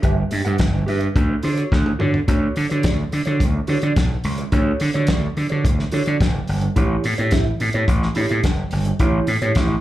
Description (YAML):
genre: disco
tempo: 107 BPM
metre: 4/4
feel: straight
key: unclear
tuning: A4 = 440 Hz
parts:
  - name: mellow electric guitar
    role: accompaniment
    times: 0.0-9.7 s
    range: E4 to F#5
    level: -26 LUFS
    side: right 3 dB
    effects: wide subtle chorus, plate reverb, slapback echo
  - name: gritty slap bass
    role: bass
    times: 0.0-9.7 s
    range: F#1 to D3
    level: -19 LUFS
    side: equal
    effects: overdrive
  - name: warm soul drum kit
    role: drums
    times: 0.0-9.7 s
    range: hi-hat, kick drum, snare drum, toms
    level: -21 LUFS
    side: equal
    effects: none
room: little or no reverb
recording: live gig heard through the venue's PA, club reverb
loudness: -17 LUFS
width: side -14 dB against mid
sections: 0.0-2.3 A section; 2.3-9.8 B section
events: drum fill 1.7-2.3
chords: 0.0 G6; 1.2 Dmaj7; 6.8 A7